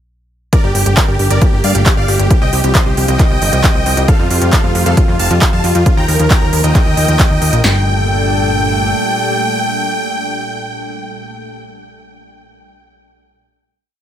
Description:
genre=uplifting trance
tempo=135 BPM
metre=4/4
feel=straight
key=G minor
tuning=A4 = 440 Hz
part: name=supersaw chords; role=melody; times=0.5-11.6 s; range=F4 to Bb5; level=-18 LUFS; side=right 1 dB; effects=sidechain pumping, tape echo
part: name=lush unison pad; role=sustained chords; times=0.5-11.6 s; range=Bb2 to Bb4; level=-21 LUFS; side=left 1 dB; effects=chorus, sidechain pumping
part: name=big-room dance drum kit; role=drums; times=0.5-7.7 s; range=kick drum, snare drum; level=-12 LUFS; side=equal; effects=none
part: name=big-room dance drum kit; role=drums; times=0.5-7.6 s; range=handclaps, hi-hat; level=-18 LUFS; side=right 1 dB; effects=none
part: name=plucky analog bass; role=bass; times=0.6-8.9 s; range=F1 to G2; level=-15 LUFS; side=equal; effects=sidechain pumping
room=little or no reverb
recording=faint mains hum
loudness=-10 LUFS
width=side -10 dB against mid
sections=0.5-7.6 drop; 7.6-11.2 final chord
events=drop 0.5-7.6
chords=0.5 Gmadd9; 2.3 Csus4; 4.1 Fadd9; 5.9 Ebsus2; 7.6 Gmadd9

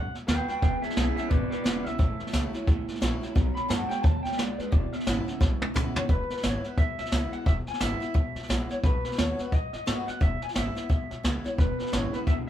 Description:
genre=rockabilly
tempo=175 BPM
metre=4/4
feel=swing 60% on 8ths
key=E major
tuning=A4 = 441 Hz
part: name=electric guitar through a small old amp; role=melody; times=0.0-12.3 s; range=G#4 to B5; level=-34 LUFS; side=left 1 dB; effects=warbly pitch drift
part: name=picked steel-string acoustic guitar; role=accompaniment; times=0.0-12.5 s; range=E2 to F#4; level=-37 LUFS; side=left 4 dB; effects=none
part: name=upright bass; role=bass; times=0.0-12.4 s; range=E1 to A2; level=-33 LUFS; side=equal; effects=none
part: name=jazz brush drum kit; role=drums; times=0.1-12.4 s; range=hi-hat, kick drum, snare drum, toms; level=-26 LUFS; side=equal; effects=none
part: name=electric guitar through a small old amp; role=riff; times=0.6-6.1, 11.6-12.5 s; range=E2 to G#3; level=-34 LUFS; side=right 3 dB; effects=spring reverb
room=moderate small room reverb, RT60 0.5 s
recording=band playing live in one room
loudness=-25 LUFS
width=side -11 dB against mid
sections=0.0-6.1 A section; 6.1-12.5 B section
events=clean electric guitar solo 0.0-6.1; drum fill 5.4-6.1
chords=0.0 B7; 0.6 E; 2.0 A; 3.4 B7; 4.7 E; 8.8 B7; 10.2 E

